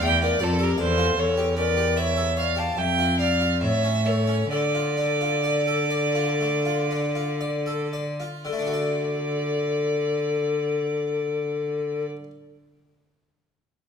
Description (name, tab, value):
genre	classical, baroque-style sonata movement with continuo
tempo	56-78 BPM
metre	4/4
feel	straight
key	D minor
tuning	A4 = 441 Hz
part	mellow hollow tenor recorder	melody	0.0-12.1 s	F4 to F5	-27 LUFS	left 6 dB	none
part	rich violin	second line	0.0-12.0 s	A4 to A5	-26 LUFS	right 6 dB	none
part	harpsichord	accompaniment	0.0-12.3 s	E2 to D5	-31 LUFS	left 2 dB	none
part	clear cello	bass	0.0-12.0 s	E2 to D3	-27 LUFS	equal	none
room	wet recital hall reverb, RT60 1.4 s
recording	minimal, uncompressed stereo recording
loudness	-22 LUFS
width	side -7 dB against mid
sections	0.0-8.5 A section; 8.5-12.7 B section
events	slowing down 0.0-8.5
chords	0.0 Dm; 1.2 A7/E; 2.8 Dm/F; 3.6 A; 4.5 Dm; 8.5 D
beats	0.41 | 1.18 1.97 2.78 3.62 | 4.51 5.44 6.41 7.41 | 8.47 9.53 10.59 11.65